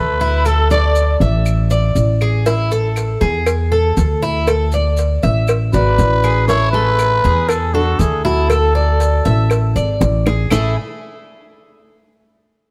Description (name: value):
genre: latin, Cuban son and guajira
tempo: 119 BPM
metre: 4/4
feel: straight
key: unclear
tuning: A4 = 441 Hz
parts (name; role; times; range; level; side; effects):
- trumpet with cup mute; melody; 0.0-1.2, 5.7-10.0 s; F#4 to D5; -20 LUFS; equal; none
- nylon-string guitar; second line; 0.0-1.2, 5.7-10.0 s; D4 to A4; -28 LUFS; equal; none
- Cuban tres; arpeggios; 0.0-10.8 s; A3 to E5; -22 LUFS; equal; none
- upright bass; bass; 0.0-10.8 s; G#1 to E2; -18 LUFS; equal; none
- maracas; percussion; 0.2-10.6 s; none; -38 LUFS; equal; none
- claves; percussion; 0.5-10.6 s; none; -34 LUFS; equal; none
- cowbell and bongos; percussion; 2.5-10.6 s; none; -24 LUFS; equal; none
room: moderate plate reverb, RT60 2.6 s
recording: heard from further back in the room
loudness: -15 LUFS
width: mono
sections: 0.0-10.5 A section; 10.5-12.5 B section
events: drum fill 10.0-10.5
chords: 0.0 A5; 4.5 Dadd9; 6.5 A5; 8.5 Dadd9; 10.5 A5